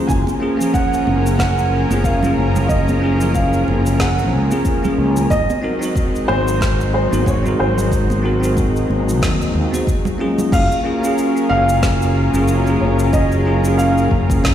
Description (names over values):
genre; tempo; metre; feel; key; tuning
sunset chillout; 92 BPM; 4/4; swing 57% on 16ths; Gb lydian; A4 = 436 Hz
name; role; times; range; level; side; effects
dark baby grand piano; melody; 0.0-14.4 s; C5 to Bb5; -22 LUFS; right 1 dB; digital delay
bell-like tine electric piano; accompaniment; 0.0-14.5 s; F3 to C5; -20 LUFS; equal; auto-pan, ping-pong delay
lush unison pad; sustained chords; 0.0-14.5 s; F3 to Bb4; -22 LUFS; left 1 dB; chorus
fretless electric bass; bass; 0.1-14.5 s; Gb1 to Eb2; -18 LUFS; equal; none
deep house drum kit; drums; 0.1-14.5 s; crash cymbal, shaker, snare drum; -28 LUFS; equal; none
electronic kick drum; drums; 0.1-14.5 s; none; -20 LUFS; equal; none
congas; percussion; 0.3-10.5 s; none; -26 LUFS; right 3 dB; none
room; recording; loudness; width
light reverb; played on a big sound system in a bare room, stone room reverb; -14 LUFS; side -10 dB against mid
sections
0.0-10.5 A section; 10.5-14.5 B section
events
none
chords
0.1 Gbmaj7; 5.3 Ab7; 10.5 Gbmaj7